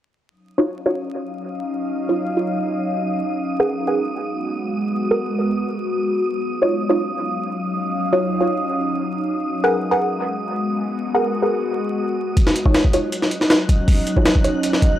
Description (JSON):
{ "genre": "drum and bass, jungle", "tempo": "159 BPM", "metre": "4/4", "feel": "straight", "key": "Eb minor", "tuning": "A4 = 439 Hz", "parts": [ { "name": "ethereal airy pad", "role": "sustained chords", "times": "0.9-15.0 s", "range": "Gb3 to F5", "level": "-23 LUFS", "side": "left 1 dB", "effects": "ensemble chorus, built-in reverb, phaser, vintage 12-bit sampler grit" }, { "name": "wind-like tuned noise texture", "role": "texture", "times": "1.1-15.0 s", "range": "Eb6 to Gb6", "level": "-31 LUFS", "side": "right 3 dB", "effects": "built-in reverb" }, { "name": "filtered dub chord stab", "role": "stabs", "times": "0.6-15.0 s", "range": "Eb4 to Gb5", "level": "-21 LUFS", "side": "right 1 dB", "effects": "phaser, dub echo" }, { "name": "jungle sampler-style drum kit", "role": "drums", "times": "12.4-14.9 s", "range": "hi-hat, kick drum, snare drum", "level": "-15 LUFS", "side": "equal", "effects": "overdrive, small room reverb" } ], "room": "moderate plate reverb, RT60 1.8 s", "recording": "dry, gritty hardware recording, vinyl crackle", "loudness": "-18 LUFS", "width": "side -12 dB against mid", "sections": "0.3-15.0 A section", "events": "none", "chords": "0.3 Ebm9; 3.3 Abm9; 6.3 Ebm9; 9.3 Abm9; 12.4 Ebm9" }